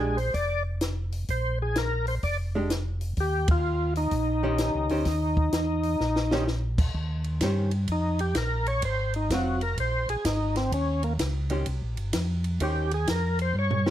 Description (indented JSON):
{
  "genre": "soul jazz organ trio",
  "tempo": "127 BPM",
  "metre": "4/4",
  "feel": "swing 66% on 8ths",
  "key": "Eb mixolydian",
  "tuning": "A4 = 438 Hz",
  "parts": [
    { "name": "percussive tonewheel organ", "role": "melody", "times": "0.0-13.9 s", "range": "Bb3 to D5", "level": "-28 LUFS", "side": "left 1 dB", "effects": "slow rotary speaker, overdrive, chorus vibrato" },
    { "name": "archtop guitar, miked and amplified", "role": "accompaniment", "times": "0.0-13.9 s", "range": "Eb3 to C5", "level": "-30 LUFS", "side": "right 1 dB", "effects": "none" },
    { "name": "mellow tonewheel organ", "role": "bass", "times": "0.0-13.9 s", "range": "F1 to G2", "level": "-28 LUFS", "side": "equal", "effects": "chorus vibrato, slow rotary speaker" },
    { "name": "compact cocktail drum kit", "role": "drums", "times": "0.2-13.9 s", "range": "crash cymbal, hi-hat, kick drum, ride cymbal, snare drum, toms", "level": "-29 LUFS", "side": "equal", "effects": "none" }
  ],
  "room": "light reverb",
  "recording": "none",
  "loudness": "-24 LUFS",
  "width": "side -12 dB against mid",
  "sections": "0.0-6.9 A section; 6.9-13.9 B section",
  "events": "band accent 3.4; drum fill 6.0-6.5, 13.6-13.9; tonewheel organ solo 6.9-13.9",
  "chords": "0.0 Bb; 3.2 Eb13; 8.8 Ab13; 10.7 Eb13"
}